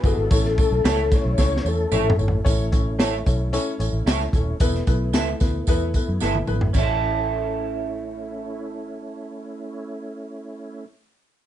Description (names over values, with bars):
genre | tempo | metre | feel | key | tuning
uptempo 1960s-style soul | 112 BPM | 4/4 | straight | A major | A4 = 440 Hz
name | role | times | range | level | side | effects
mellow tonewheel organ | melody | 0.0-2.2 s | A4 to C#5 | -25 LUFS | left 5 dB | chorus vibrato, slow rotary speaker, tape echo
warm upright piano | accompaniment | 0.0-10.9 s | A3 to C#5 | -28 LUFS | left 4 dB | none
tonewheel organ | sustained chords | 0.0-10.9 s | G#3 to F#4 | -34 LUFS | right 1 dB | chorus vibrato, slow rotary speaker
vintage muted fingered electric bass | bass | 0.0-10.9 s | D#1 to F#2 | -25 LUFS | equal | none
crunchy breakbeat drum kit | drums | 0.0-6.9 s | crash cymbal, hi-hat, kick drum, ride cymbal, snare drum, toms | -22 LUFS | equal | none
tambourine | percussion | 0.0-7.0 s | none | -36 LUFS | right 7 dB | none
electric guitar through a small old amp | stabs | 0.8-10.9 s | B3 to C#5 | -27 LUFS | right 7 dB | analog chorus
room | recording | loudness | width
light reverb | dark, warm production, nothing above 10.7 kHz | -19 LUFS | side -11 dB against mid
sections
0.0-2.5 A section; 2.5-6.7 B section; 6.7-11.0 C section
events
drum fill 1.4-2.5, 6.2-6.7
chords
0.3 A; 4.6 Esus4; 6.7 A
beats
| 0.32 0.85 1.39 1.93 | 2.46 3.00 3.53 4.07 | 4.60 5.14 5.67 6.21 | 6.75 7.28 7.82 8.35 | 8.89 9.43 9.96 10.50